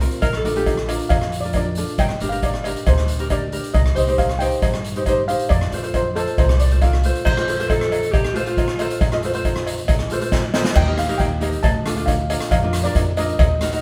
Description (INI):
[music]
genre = calypso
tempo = 137 BPM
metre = 4/4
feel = straight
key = unclear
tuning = A4 = 441 Hz
[part]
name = ukulele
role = accompaniment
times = 0.0-13.8 s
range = C4 to Eb5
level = -27 LUFS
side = equal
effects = none
[part]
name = upright bass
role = bass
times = 0.0-13.8 s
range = G1 to G2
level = -24 LUFS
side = equal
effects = none
[part]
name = street-band drum kit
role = drums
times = 0.0-13.8 s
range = crash cymbal, hi-hat, kick drum, rim click, snare drum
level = -24 LUFS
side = equal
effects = none
[part]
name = warm alto saxophone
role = second line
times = 0.2-1.0, 7.3-9.2 s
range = F4 to C5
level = -25 LUFS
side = equal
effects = none
[part]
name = cowbell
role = percussion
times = 0.2-13.5 s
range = none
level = -29 LUFS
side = equal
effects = none
[part]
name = steel pan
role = melody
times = 1.1-7.0, 10.8-13.8 s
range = A4 to A5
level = -28 LUFS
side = equal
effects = none
[sound]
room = moderate stone room reverb, RT60 1.1 s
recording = band playing live in one room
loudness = -20 LUFS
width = mono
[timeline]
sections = 0.0-7.3 A section; 7.3-10.8 B section; 10.8-13.8 C section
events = steel pan solo 0.0-7.3; drum fill 10.3-10.8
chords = 0.2 Bbmaj7; 2.0 Gm; 3.7 Cm; 5.5 F; 10.8 Eb; 11.6 Dm; 12.5 Bb/F